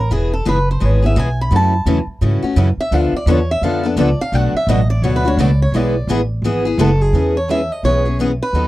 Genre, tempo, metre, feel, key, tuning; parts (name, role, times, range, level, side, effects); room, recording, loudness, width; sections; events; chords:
acoustic string swing (jazz manouche); 171 BPM; 4/4; swing 61% on 8ths; A4 = 439 Hz
picked swing-style acoustic guitar; melody; 0.0-8.7 s; G#4 to B5; -20 LUFS; right 1 dB
upright bass; bass; 0.0-8.7 s; E1 to G#2; -16 LUFS; equal
picked steel-string acoustic guitar; accompaniment; 0.1-8.7 s; B2 to A4; -19 LUFS; left 4 dB
picked steel-string acoustic guitar; accompaniment; 1.5-8.7 s; B2 to B4; -23 LUFS; right 7 dB
little or no reverb; dry, close 1970s-style studio recording; -14 LUFS; side -16 dB against mid
0.0-7.1 A section; 7.1-8.7 B section
steel-string acoustic guitar solo 0.0-7.1
0.1 E; 1.5 F#m7; 2.9 Dm6; 4.3 Bm7; 5.7 E; 7.1 E6